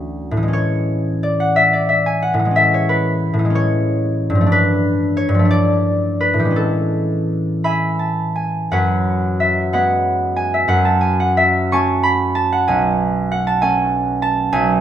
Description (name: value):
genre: classical, solo harp piece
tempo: 53-68 BPM (dotted quarters)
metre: 6/8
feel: rubato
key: A major, F# minor from 8.7 s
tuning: A4 = 440 Hz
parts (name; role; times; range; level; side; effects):
- concert harp; solo; 0.0-14.8 s; B1 to C#6; -15 LUFS; equal; none
room: moderate scoring stage reverb, RT60 1.8 s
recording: close, detailed microphones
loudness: -15 LUFS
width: side -10 dB against mid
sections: 0.0-8.7 A section; 8.7-14.8 B section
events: none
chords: 0.0 Dmaj7; 0.5 Amaj7; 4.5 G9; 6.6 Amaj7; 8.7 F#m11; 12.7 B9sus4